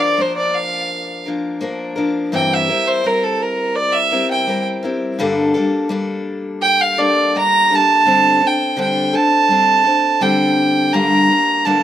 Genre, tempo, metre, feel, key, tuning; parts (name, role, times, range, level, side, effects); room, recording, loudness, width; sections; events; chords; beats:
folk; 84 BPM; 4/4; straight; G minor; A4 = 441 Hz
warm fiddle; melody; 0.0-11.8 s; A4 to Bb5; -14 LUFS; right 2 dB
picked steel-string acoustic guitar; accompaniment; 0.0-11.8 s; G2 to Bb4; -19 LUFS; left 2 dB
light reverb; recorded outdoors, with no room sound; -14 LUFS; side -11 dB against mid
0.0-8.1 A section; 8.1-11.8 B section
fiddle solo 0.0-8.1
0.0 Gm7 (rootless); 2.3 C7/G; 5.2 Gmadd9; 8.1 D7sus4; 10.9 Gmadd9
0.18 0.90 1.61 | 2.33 3.05 3.77 4.48 | 5.20 5.92 6.64 7.35 | 8.07 8.79 9.51 10.22 | 10.94 11.65